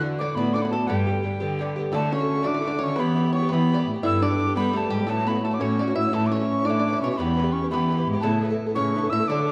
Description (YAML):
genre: celtic folk, Celtic jig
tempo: 114 BPM (dotted quarters)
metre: 6/8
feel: straight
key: unclear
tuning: A4 = 441 Hz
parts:
  - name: bluegrass banjo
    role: second line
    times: 0.0-9.5 s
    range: G4 to E5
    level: -36 LUFS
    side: equal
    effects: none
  - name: warm clarinet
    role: second line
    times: 0.0-9.5 s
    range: G3 to E4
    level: -30 LUFS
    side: equal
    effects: none
  - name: Irish bouzouki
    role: accompaniment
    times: 0.0-9.5 s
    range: G2 to A4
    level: -31 LUFS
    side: equal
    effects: none
  - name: rich cello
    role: bass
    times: 0.0-9.5 s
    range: E2 to G3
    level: -28 LUFS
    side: equal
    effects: none
  - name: mellow mid whistle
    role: melody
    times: 0.2-9.5 s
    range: G5 to E6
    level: -30 LUFS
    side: equal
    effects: none
room: wet recital hall reverb, RT60 1.6 s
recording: dark, warm production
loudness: -24 LUFS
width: mono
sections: 0.0-1.9 A section; 1.9-9.5 B section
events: none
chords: 0.0 Dadd9; 0.9 G; 1.9 D; 3.0 Em; 4.0 G; 5.1 A6; 6.1 A; 7.2 Em; 8.2 Aadd9